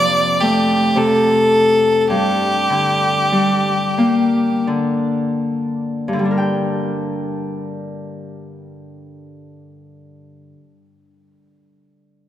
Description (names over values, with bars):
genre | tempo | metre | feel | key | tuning
celtic folk, Celtic slow air | 36-55 BPM | 3/4 | rubato | G minor | A4 = 441 Hz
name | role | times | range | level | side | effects
bright fiddle | melody | 0.0-4.7 s | G4 to D5 | -16 LUFS | equal | none
Celtic harp | accompaniment | 0.0-10.8 s | F2 to G5 | -18 LUFS | left 1 dB | none
room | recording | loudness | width
wet church reverb, RT60 3.4 s | none | -15 LUFS | side -11 dB against mid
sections
0.0-6.2 A section; 6.2-11.1 B section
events
slowing down 0.0-6.2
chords
0.0 F; 2.1 Gm